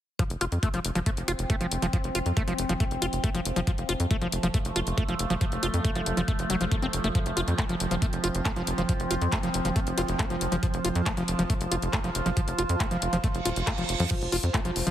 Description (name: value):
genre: psychedelic trance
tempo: 138 BPM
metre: 4/4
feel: straight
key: F major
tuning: A4 = 441 Hz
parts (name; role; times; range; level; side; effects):
- overtone-sweeping drone; sustained chords; 1.2-14.9 s; F3 to F4; -32 LUFS; right 1 dB; chorus, built-in reverb, sidechain pumping
- screaming distorted acid line; riff; 0.2-14.9 s; F3 to F4; -31 LUFS; equal; distortion, chorus, auto-pan, sidechain pumping, dub echo
- drum and bass drum kit; drums; 0.2-14.9 s; crash cymbal, handclaps, hi-hat; -33 LUFS; left 2 dB; none
- electronic kick drum; drums; 0.2-14.6 s; none; -28 LUFS; equal; none
- granular cloud pad; texture; 4.4-14.9 s; F4 to A5; -42 LUFS; right 1 dB; none
- tight sequencer bass; bass; 0.3-14.9 s; Eb1 to F2; -30 LUFS; equal; none
- zap and reverse cymbal; sound effects; 10.0-10.1, 13.4-14.1 s; none; -35 LUFS; right 5 dB; none
room: light reverb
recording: heavily compressed radio sound, multiband compression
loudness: -25 LUFS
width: side -12 dB against mid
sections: 0.2-14.9 A section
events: reverse cymbal 13.4-14.1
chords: 0.2 F5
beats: | 0.19 0.63 1.06 1.50 | 1.93 2.37 2.80 3.24 | 3.67 4.11 4.54 4.98 | 5.41 5.85 6.28 6.71 | 7.15 7.58 8.02 8.45 | 8.89 9.32 9.76 10.19 | 10.63 11.06 11.50 11.93 | 12.37 12.80 13.24 13.67 | 14.11 14.54